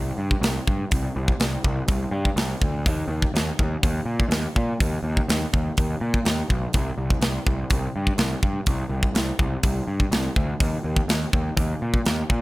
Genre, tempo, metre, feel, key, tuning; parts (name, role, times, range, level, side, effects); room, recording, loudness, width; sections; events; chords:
heavy metal; 124 BPM; 4/4; straight; C minor; A4 = 441 Hz
fuzz picked electric bass; bass; 0.0-12.4 s; B1 to Bb2; -25 LUFS; equal; overdrive
tight metal drum kit; drums; 0.3-12.4 s; hi-hat, kick drum, snare drum; -23 LUFS; equal
little or no reverb; -21 LUFS; side -20 dB against mid
0.0-12.4 A section